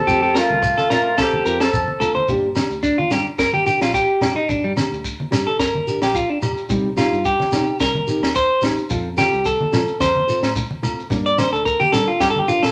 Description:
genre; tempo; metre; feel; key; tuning
highlife guitar band; 109 BPM; 4/4; swing 54% on 16ths; G minor; A4 = 440 Hz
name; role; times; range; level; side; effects
mellow horn section; melody; 0.0-2.0 s; A3 to A4; -21 LUFS; equal; none
fingered electric bass; bass; 0.0-12.7 s; F1 to G3; -33 LUFS; equal; none
nylon-string guitar; accompaniment; 0.1-12.7 s; F3 to Bb4; -28 LUFS; equal; none
clean electric guitar; arpeggios; 0.1-12.7 s; G3 to D5; -21 LUFS; equal; none
compact cocktail drum kit; drums; 0.1-12.7 s; kick drum, snare drum; -26 LUFS; equal; none
shekere; percussion; 0.1-12.6 s; none; -32 LUFS; equal; none
agogo bells; percussion; 0.4-12.7 s; none; -34 LUFS; equal; none
congas; percussion; 0.5-12.5 s; none; -31 LUFS; equal; none
room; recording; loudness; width
wet large studio reverb, RT60 0.9 s; none; -19 LUFS; mono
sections
0.0-2.3 A section; 2.3-12.7 B section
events
clean electric guitar solo 2.3-12.7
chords
0.1 F; 2.3 Gm; 6.7 Cm; 8.9 F; 11.1 Gm

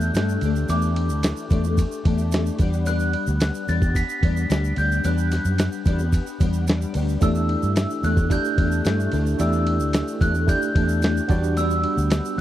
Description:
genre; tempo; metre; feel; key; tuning
indie pop, bedroom pop; 110 BPM; 4/4; straight; unclear; A4 = 440 Hz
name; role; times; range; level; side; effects
glockenspiel with rubber mallets; melody; 0.0-12.4 s; D6 to B6; -28 LUFS; right 1 dB; lush chorus
nylon-string guitar; accompaniment; 0.0-12.4 s; E3 to G4; -27 LUFS; left 5 dB; ensemble chorus, warbly pitch drift
vintage muted fingered electric bass; bass; 0.0-12.4 s; D2 to G2; -22 LUFS; equal; none
tube shaker; percussion; 0.0-12.4 s; none; -43 LUFS; right 15 dB; none
dusty soul sampler-style drum kit; drums; 0.1-12.2 s; hi-hat, kick drum, ride cymbal, snare drum; -22 LUFS; equal; none
tine electric piano; accompaniment; 7.2-12.4 s; A3 to D5; -27 LUFS; right 4 dB; medium stereo tremolo
room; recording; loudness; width
little or no reverb; dry, close 1970s-style studio recording; -19 LUFS; side -13 dB against mid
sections
0.0-12.4 A section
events
none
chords
0.0 A7sus4; 2.6 Gmaj7; 7.2 A7sus4; 11.3 Gmaj7

